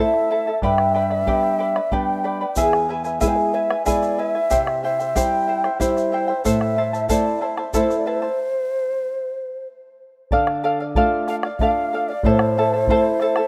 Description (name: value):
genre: andean folk, Andean ensemble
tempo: 93 BPM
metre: 3/4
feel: straight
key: A minor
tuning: A4 = 440 Hz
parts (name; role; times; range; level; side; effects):
- breathy bright round clay ocarina; melody; 0.0-13.5 s; G#4 to G5; -25 LUFS; equal; none
- charango; accompaniment; 0.0-13.5 s; E4 to B5; -24 LUFS; equal; none
- flamenco guitar; accompaniment; 0.0-13.4 s; E2 to F4; -27 LUFS; equal; none
- bombo; percussion; 0.1-13.5 s; none; -28 LUFS; equal; none
- egg shaker; percussion; 2.6-8.0 s; none; -38 LUFS; equal; none
room: light reverb, small room ambience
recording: rough home demo mix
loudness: -20 LUFS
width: mono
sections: 0.0-10.3 A section; 10.3-13.5 B section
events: stop 8.4-10.3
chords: 0.0 Am; 0.6 G; 2.6 E; 4.5 C; 6.4 Am; 8.4 N.C.; 10.3 Dm; 12.2 Am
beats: | 0.62 1.27 1.92 | 2.57 3.21 3.86 | 4.51 5.16 5.80 | 6.45 7.09 7.74 | 8.38 9.03 9.67 | 10.31 10.96 11.60 | 12.24 12.88